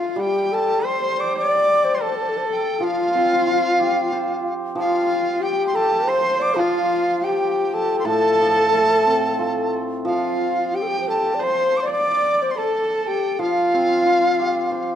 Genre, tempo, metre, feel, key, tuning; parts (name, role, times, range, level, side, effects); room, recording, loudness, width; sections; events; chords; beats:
chinese traditional, Chinese chamber ensemble; 91 BPM; 4/4; rubato; A4 = 442 Hz
large dizi; melody; 0.0-15.0 s; F5 to D6; -22 LUFS; equal
breathy mellow xiao; second line; 0.0-15.0 s; F4 to D5; -22 LUFS; left 4 dB
warm horsehead fiddle; second line; 0.0-15.0 s; F4 to D5; -24 LUFS; right 4 dB
hammered dulcimer; accompaniment; 0.0-15.0 s; A2 to C5; -26 LUFS; right 2 dB
moderate concert hall reverb, RT60 1.9 s; dark, warm production; -17 LUFS; side -10 dB against mid
0.2-15.0 A section
| 0.18 0.86 1.52 2.17 | 2.83 3.49 4.14 4.79 | 5.44 6.09 6.75 7.41 | 8.08 8.74 9.40 10.08 | 10.75 11.42 12.08 12.75 | 13.41 14.07 14.72